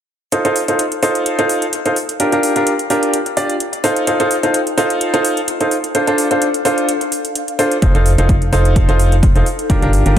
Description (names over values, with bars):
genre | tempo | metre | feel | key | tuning
piano house | 128 BPM | 4/4 | swing 54% on 16ths | F mixolydian | A4 = 441 Hz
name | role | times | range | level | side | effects
clear upright piano | riff | 0.3-10.2 s | D4 to D5 | -15 LUFS | equal | sidechain pumping, low-pass filter, ping-pong delay
electronic hi-hat | drums | 0.3-10.2 s | none | -23 LUFS | equal | overdrive
ethereal airy pad | texture | 2.2-10.2 s | D4 to G5 | -28 LUFS | left 2 dB | none
organ-like FM bass | bass | 7.8-10.2 s | F1 to G1 | -14 LUFS | equal | sidechain pumping
electronic kick drum | drums | 7.8-10.2 s | none | -14 LUFS | equal | none
room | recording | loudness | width
moderate plate reverb, RT60 2.0 s | dreamy mix soaked in reverb | -13 LUFS | side -10 dB against mid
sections
0.3-10.2 A section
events
none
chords
0.3 F7; 2.0 Gm7; 3.8 F7; 5.9 Dm7; 7.8 F7; 9.5 Gm7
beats
| 0.32 0.79 1.26 1.73 | 2.20 2.67 3.13 3.60 | 4.07 4.54 5.01 5.48 | 5.95 6.42 6.88 7.35 | 7.82 8.29 8.76 9.23 | 9.70 10.17